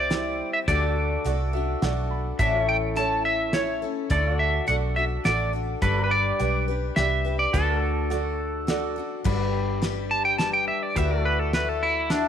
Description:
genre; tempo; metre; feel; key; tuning
honky-tonk and classic country; 105 BPM; 3/4; straight; G major; A4 = 440 Hz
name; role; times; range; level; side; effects
clean electric guitar; melody; 0.0-12.3 s; D4 to A5; -25 LUFS; right 1 dB; none
picked steel-string acoustic guitar; accompaniment; 0.0-12.3 s; A2 to C5; -30 LUFS; left 11 dB; none
pedal steel guitar; sustained chords; 0.0-12.3 s; E4 to E5; -33 LUFS; equal; none
vintage muted fingered electric bass; bass; 0.0-12.3 s; G1 to D2; -28 LUFS; right 1 dB; none
clear baby grand piano; accompaniment; 0.1-9.2 s; E4 to B5; -33 LUFS; right 13 dB; none
cloth-damped thuddy drum kit; drums; 0.1-12.2 s; crash cymbal, hi-hat, kick drum, snare drum; -29 LUFS; equal; none
room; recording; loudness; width
light reverb, studio reverb; 1960s-style stereo with parts hard left and right; -22 LUFS; side -8 dB against mid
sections
0.0-9.3 A section; 9.3-12.3 B section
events
grand piano fill 1.3-2.4; clean electric guitar solo 9.3-12.3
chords
0.0 C; 0.7 D; 2.4 A; 4.1 D; 5.8 G; 7.5 D; 9.3 G; 11.0 Dadd9

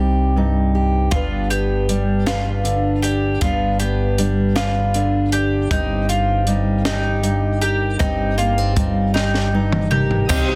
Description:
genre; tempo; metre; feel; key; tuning
indie folk with a building arrangement; 52 BPM (dotted quarters); 6/8; straight; C minor; A4 = 441 Hz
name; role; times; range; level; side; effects
fingerpicked steel-string acoustic guitar; accompaniment; 0.0-10.3 s; G2 to D5; -24 LUFS; equal; none
deep dub fingered electric bass; bass; 0.0-10.6 s; G1 to C2; -23 LUFS; equal; none
mandolin; arpeggios; 1.1-10.6 s; Eb4 to G4; -26 LUFS; equal; none
compact cocktail drum kit; drums; 1.1-10.5 s; crash cymbal, hi-hat, kick drum, snare drum, toms; -25 LUFS; equal; none
clear upright piano; accompaniment; 10.3-10.6 s; C2 to Eb5; -29 LUFS; equal; none
picked acoustic archtop guitar; accompaniment; 10.3-10.6 s; C3 to G4; -26 LUFS; equal; none
dark chamber string section; sustained chords; 10.3-10.6 s; C5 to Eb6; -30 LUFS; equal; none
tambourine; percussion; 10.3-10.5 s; none; -31 LUFS; equal; none
room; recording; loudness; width
studio reverb; dense, heavily limited modern master; -19 LUFS; mono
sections
0.0-10.3 A section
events
drum fill 9.2-10.3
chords
0.0 Cm; 1.1 G; 5.7 Cm/G

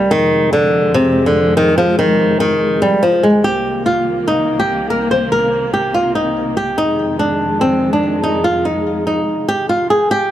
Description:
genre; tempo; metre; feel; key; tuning
hip hop; 144 BPM; 4/4; half-time; unclear; A4 = 442 Hz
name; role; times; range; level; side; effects
flamenco guitar; melody; 0.0-10.3 s; C3 to C5; -13 LUFS; equal; none
dark symphonic string section; sustained chords; 0.0-10.1 s; C2 to Bb3; -20 LUFS; left 1 dB; none
room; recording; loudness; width
moderate plate reverb, RT60 3.3 s; none; -13 LUFS; side -12 dB against mid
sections
0.0-3.4 A section; 3.4-10.1 B section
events
none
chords
0.1 Fm7; 3.4 Cm7; 6.8 Fm7

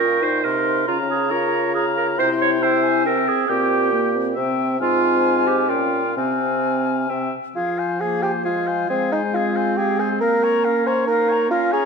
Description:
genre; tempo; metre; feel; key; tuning
quick classical-period movement for wind quintet; 137 BPM; 3/4; rubato; F minor; A4 = 440 Hz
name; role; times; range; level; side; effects
silver concert flute; melody; 0.0-11.9 s; F5 to Db6; -26 LUFS; left 10 dB; none
warm oboe; second line; 0.0-11.9 s; Ab4 to G5; -27 LUFS; left 4 dB; none
bright clarinet; accompaniment; 0.0-11.9 s; Ab3 to Db5; -22 LUFS; right 6 dB; none
warm French horn; accompaniment; 0.0-11.9 s; F3 to F4; -25 LUFS; left 2 dB; none
warm bassoon; bass; 0.0-11.9 s; Ab2 to C5; -23 LUFS; right 2 dB; none
room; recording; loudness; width
moderate scoring stage reverb, RT60 1.6 s; none; -17 LUFS; side -5 dB against mid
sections
0.0-7.6 A section; 7.6-11.9 A section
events
none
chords
0.0 Bbm; 0.9 Bbm/Db; 2.2 C; 3.5 C7/Bb; 4.8 Fm/Ab; 5.7 Gm7b5/Bb; 6.2 Fm/C; 7.6 Fm; 8.9 Fm/Ab; 10.2 Bbm

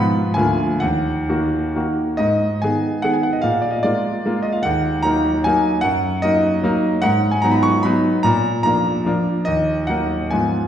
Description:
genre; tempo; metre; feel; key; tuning
classical, romantic triple-time dance for piano with dotted rhythms; 122-161 BPM; 3/4; rubato; Eb minor; A4 = 441 Hz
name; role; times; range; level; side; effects
clear grand piano; solo; 0.0-10.7 s; D2 to Db6; -16 LUFS; equal; none
room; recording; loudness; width
wet recital hall reverb, RT60 1.9 s; heard from further back in the room; -16 LUFS; side -9 dB against mid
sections
0.0-2.2 A section; 2.2-10.7 A section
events
none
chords
0.4 Bb7/D; 0.8 Ebm; 2.2 Abm; 3.4 Bb7; 4.6 Ebm; 5.8 Ebm/Gb; 7.0 Abm7; 8.2 Bb; 9.5 Ebm

